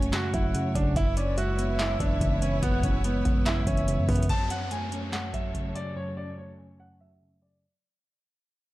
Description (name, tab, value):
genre	hip hop, trap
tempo	144 BPM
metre	4/4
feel	half-time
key	F# minor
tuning	A4 = 440 Hz
part	clear concert grand piano	melody	0.0-7.6 s	B3 to A5	-32 LUFS	right 2 dB	low-pass filter
part	mellow tine electric piano	accompaniment	0.0-7.7 s	F#2 to C#4	-30 LUFS	equal	phaser, low-pass filter
part	clear symphonic string section	sustained chords	0.0-7.6 s	F#2 to C#5	-40 LUFS	left 1 dB	low-pass filter
part	hard-hitting 808-style bass	bass	0.0-4.3 s	F#1 to F#2	-29 LUFS	equal	none
part	booming analog drum machine	drums	0.0-5.9 s	handclaps, hi-hat, kick drum, snare drum	-29 LUFS	equal	overdrive
part	soft octave-layered synth lead	second line	0.3-4.3 s	D5 to F#5	-36 LUFS	left 2 dB	chorus, digital delay
part	downlifter	sound effects	4.3-7.6 s	none	-40 LUFS	left 1 dB	none
room	little or no reverb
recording	dark, warm production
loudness	-24 LUFS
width	side -17 dB against mid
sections	0.0-4.3 A section; 4.3-7.6 B section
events	fade-out 4.3-7.6; filter sweep 4.3-7.6; break 6.0-7.6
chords	0.0 F#m; 1.0 C#m7/F#; 4.3 F#m